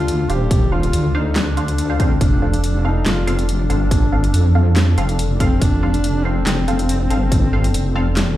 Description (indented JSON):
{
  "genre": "deep dubstep",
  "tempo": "141 BPM",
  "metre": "4/4",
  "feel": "half-time",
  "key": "unclear",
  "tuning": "A4 = 440 Hz",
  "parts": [
    { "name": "mellow duduk", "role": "melody", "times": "0.0-8.4 s", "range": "C4 to G4", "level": "-24 LUFS", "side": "left 1 dB", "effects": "dub echo" },
    { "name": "deep dark ambient pad", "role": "sustained chords", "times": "0.0-8.4 s", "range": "D4 to A4", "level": "-26 LUFS", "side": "left 4 dB", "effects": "chorus, built-in reverb, vintage 12-bit sampler grit" },
    { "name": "filtered dub chord stab", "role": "stabs", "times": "0.0-8.1 s", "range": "C4 to F5", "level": "-26 LUFS", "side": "equal", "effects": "phaser, analog chorus, dub echo" },
    { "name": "deep soft wobble bass", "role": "bass", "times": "0.0-8.4 s", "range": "Eb1 to F2", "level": "-17 LUFS", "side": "equal", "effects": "chorus" },
    { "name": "dubstep drum kit", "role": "drums", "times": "0.1-8.3 s", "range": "handclaps, hi-hat, snare drum", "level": "-24 LUFS", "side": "equal", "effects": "studio reverb" },
    { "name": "electronic kick drum", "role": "drums", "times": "0.5-7.4 s", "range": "none", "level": "-16 LUFS", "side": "equal", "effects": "studio reverb" }
  ],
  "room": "little or no reverb",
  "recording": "played on a big sound system in a bare room, large studio reverb",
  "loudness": "-15 LUFS",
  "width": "side -14 dB against mid",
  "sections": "0.0-8.4 A section",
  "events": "none",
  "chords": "0.0 Dm7; 2.2 F"
}